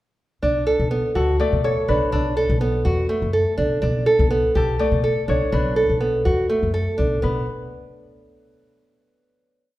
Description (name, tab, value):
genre	contemporary instrumental, chamber music in an uneven meter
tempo	247 BPM (eighths)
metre	7/8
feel	straight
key	B minor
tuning	A4 = 441 Hz
part	nylon-string guitar	arpeggios	0.4-7.5 s	A3 to A4	-20 LUFS	right 1 dB	none
part	upright bass	bass	0.4-7.5 s	B1 to B2	-22 LUFS	equal	none
part	concert harp	melody	1.2-7.5 s	A4 to D5	-27 LUFS	left 5 dB	none
room	wet recital hall reverb, RT60 1.4 s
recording	recorded in a church or concert hall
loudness	-18 LUFS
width	side -16 dB against mid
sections	0.4-7.2 A section; 7.2-8.9 final note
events	none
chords	0.4 Bm7; 3.8 Gadd9/B; 5.5 Bm7; 7.2 N.C.